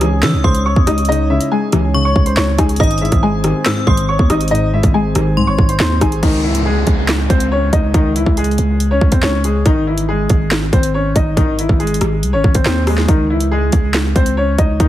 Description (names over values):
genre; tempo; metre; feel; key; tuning
hip hop, drill; 140 BPM; 4/4; half-time; C# harmonic minor; A4 = 440 Hz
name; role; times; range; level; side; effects
clear concert grand piano; melody; 0.0-14.9 s; D#3 to D#6; -18 LUFS; left 1 dB; ping-pong delay
metallic FM bell; second line; 0.0-6.2 s; B#5 to E6; -25 LUFS; left 2 dB; chorus, phaser, ping-pong delay
string-like resonator pluck; accompaniment; 0.0-6.2 s; G#2 to D#4; -19 LUFS; left 3 dB; chorus
glass harmonica; sustained chords; 0.0-6.2 s; G#3 to C#5; -26 LUFS; equal; none
growling 808-style bass; bass; 0.0-14.9 s; G#1 to E3; -17 LUFS; equal; none
drill drum kit; drums; 0.0-14.9 s; crash cymbal, handclaps, hi-hat, kick drum, rim click, snare drum; -15 LUFS; equal; overdrive
downlifter; sound effects; 6.2-9.7 s; none; -26 LUFS; right 1 dB; none
room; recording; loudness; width
little or no reverb; heavily compressed radio sound; -12 LUFS; side -13 dB against mid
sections
0.0-6.2 A section; 6.2-14.9 B section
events
none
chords
0.0 C#madd9; 2.8 G#; 6.2 C#madd9; 9.7 G#; 13.1 C#sus2